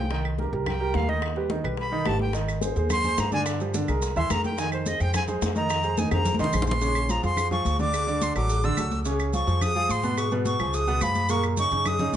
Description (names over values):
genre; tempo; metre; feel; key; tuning
Afro-Cuban jazz; 215 BPM; 4/4; straight; F minor; A4 = 441 Hz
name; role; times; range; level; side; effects
breathy bright concert flute; melody; 0.0-12.2 s; C5 to E6; -28 LUFS; equal; plate reverb
warm baby grand piano; accompaniment; 0.0-12.2 s; Bb2 to E5; -28 LUFS; right 3 dB; none
upright bass; bass; 0.0-12.2 s; Ab1 to Ab2; -28 LUFS; equal; none
bongos and cowbell; percussion; 0.1-12.2 s; none; -34 LUFS; left 5 dB; none
congas; percussion; 0.1-12.2 s; none; -32 LUFS; left 2 dB; none
claves; percussion; 0.3-12.0 s; none; -36 LUFS; right 3 dB; none
maracas; percussion; 2.3-12.2 s; none; -39 LUFS; right 5 dB; none
room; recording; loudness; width
moderate studio reverb, RT60 0.5 s; nothing above 10.4 kHz; -23 LUFS; side -10 dB against mid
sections
0.0-6.8 A section; 6.8-12.2 A section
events
flute solo 0.0-12.2; drum fill 6.0-6.8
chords
0.1 Cm7; 1.2 Ebaug; 2.3 Ab; 3.5 Gm7; 4.0 C7alt; 4.6 Fm7; 6.8 Bbm9; 7.9 Dadd9; 9.1 Db; 10.7 Db7; 11.3 Gb6